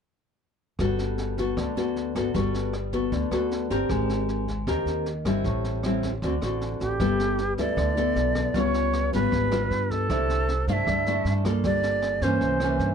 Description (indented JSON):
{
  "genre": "bossa nova",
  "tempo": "155 BPM",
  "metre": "4/4",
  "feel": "straight",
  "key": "G major",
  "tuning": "A4 = 440 Hz",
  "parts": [
    { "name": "nylon-string guitar", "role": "accompaniment", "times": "0.8-12.9 s", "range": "A2 to Bb4", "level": "-26 LUFS", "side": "left 2 dB", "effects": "none" },
    { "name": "upright bass", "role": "bass", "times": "0.8-12.9 s", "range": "G1 to G2", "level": "-29 LUFS", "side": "right 1 dB", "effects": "none" },
    { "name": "jazz brush drum kit", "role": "drums", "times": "0.8-12.8 s", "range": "kick drum, rim click, snare drum", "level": "-34 LUFS", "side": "right 1 dB", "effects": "none" },
    { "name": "bright reedy shakuhachi", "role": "melody", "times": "6.8-12.9 s", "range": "G4 to F5", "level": "-26 LUFS", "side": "right 2 dB", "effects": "none" }
  ],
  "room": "moderate small room reverb, RT60 0.5 s",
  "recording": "dark, warm production",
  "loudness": "-23 LUFS",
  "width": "side -7 dB against mid",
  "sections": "0.8-7.0 A section; 7.0-12.9 B section",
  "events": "none",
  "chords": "0.8 Gmaj9; 3.9 Abmaj9; 5.4 Am7; 6.2 D7; 7.0 G69; 8.5 C#7#11; 10.1 C69; 11.6 Gm9; 12.4 C7b9"
}